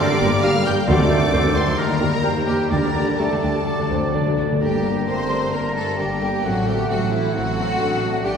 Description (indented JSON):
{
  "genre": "classical",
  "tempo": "124-136 BPM",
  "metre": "4/4",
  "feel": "rubato",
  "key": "G minor",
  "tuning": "A4 = 440 Hz",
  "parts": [
    { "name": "warm symphonic violin section", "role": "melody", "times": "0.0-8.4 s", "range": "E5 to G6", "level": "-29 LUFS", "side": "left 1 dB", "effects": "none" },
    { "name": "clear oboe", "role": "second line", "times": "0.0-8.4 s", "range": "Bb4 to Bb5", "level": "-31 LUFS", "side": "equal", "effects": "none" },
    { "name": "large flute ensemble", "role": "second line", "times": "0.0-8.4 s", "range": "E5 to C6", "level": "-31 LUFS", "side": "equal", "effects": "none" },
    { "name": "warm clarinet", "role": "second line", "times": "0.0-8.4 s", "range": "Bb3 to G5", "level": "-31 LUFS", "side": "right 1 dB", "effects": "none" },
    { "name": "warm symphonic violin section", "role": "second line", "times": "0.0-8.4 s", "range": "E4 to G5", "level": "-28 LUFS", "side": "equal", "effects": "none" },
    { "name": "dark bassoon", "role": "accompaniment", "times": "0.0-8.4 s", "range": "Eb3 to D4", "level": "-30 LUFS", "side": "right 1 dB", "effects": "none" },
    { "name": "dark French horn section", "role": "sustained chords", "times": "0.0-8.4 s", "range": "G3 to G4", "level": "-28 LUFS", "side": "left 1 dB", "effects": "none" },
    { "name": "warm trombone section", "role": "sustained chords", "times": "0.0-8.4 s", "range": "C3 to Bb3", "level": "-30 LUFS", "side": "right 2 dB", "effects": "none" },
    { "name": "concert harp", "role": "arpeggios", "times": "0.0-8.4 s", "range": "G2 to C6", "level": "-27 LUFS", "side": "left 4 dB", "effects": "none" },
    { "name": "bright trumpet section", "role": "stabs", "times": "0.0-4.4 s", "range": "A4 to D5", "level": "-29 LUFS", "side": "right 1 dB", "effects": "none" },
    { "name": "warm symphonic viola section", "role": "accompaniment", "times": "0.1-8.3 s", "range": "D3 to Bb4", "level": "-28 LUFS", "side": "equal", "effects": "none" },
    { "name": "warm symphonic cello section", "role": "bass", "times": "0.1-8.4 s", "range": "D2 to C4", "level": "-27 LUFS", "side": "equal", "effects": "none" },
    { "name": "dark tuba", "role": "bass", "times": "0.2-4.4 s", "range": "G1 to Eb2", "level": "-31 LUFS", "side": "right 2 dB", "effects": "none" },
    { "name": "rich symphonic double bass section", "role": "bass", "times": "0.2-8.4 s", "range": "G1 to Eb2", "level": "-28 LUFS", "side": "right 2 dB", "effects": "none" },
    { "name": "timpani", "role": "percussion", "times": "0.9-4.6 s", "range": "D3", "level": "-28 LUFS", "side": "left 2 dB", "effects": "none" }
  ],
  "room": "wet scoring stage reverb, RT60 2.0 s",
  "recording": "heard from further back in the room",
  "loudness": "-17 LUFS",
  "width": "side -6 dB against mid",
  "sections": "0.0-4.6 A section; 4.6-8.4 B section",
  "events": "timpani fill 3.7-4.6",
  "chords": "0.0 Gm; 0.9 D7b9; 1.8 Eb; 2.7 Dsus4; 3.7 D; 4.6 Gm; 6.4 F#dim/A"
}